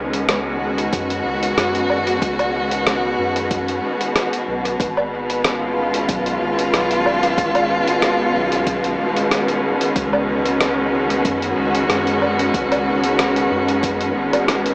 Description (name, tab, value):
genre	ambient dub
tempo	93 BPM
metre	4/4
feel	swing 53% on 16ths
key	unclear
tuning	A4 = 440 Hz
part	rich studio string section	sustained chords	0.0-14.7 s	B2 to F#4	-17 LUFS	equal	none
part	soft dub sub bass	bass	0.0-14.7 s	D#1 to F#2	-31 LUFS	equal	tube saturation
part	lo-fi sampler-style drum kit	drums	0.1-14.7 s	hi-hat, rim click, woodblock	-22 LUFS	equal	studio reverb, dub echo
part	electronic kick drum	drums	0.9-14.0 s	none	-24 LUFS	equal	overdrive, studio reverb
room	wet spring reverb, RT60 2.5 s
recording	small speaker sound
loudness	-16 LUFS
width	side -29 dB against mid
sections	0.0-14.7 A section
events	none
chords	0.0 C#9sus4; 4.8 G#m6; 10.0 C#9sus4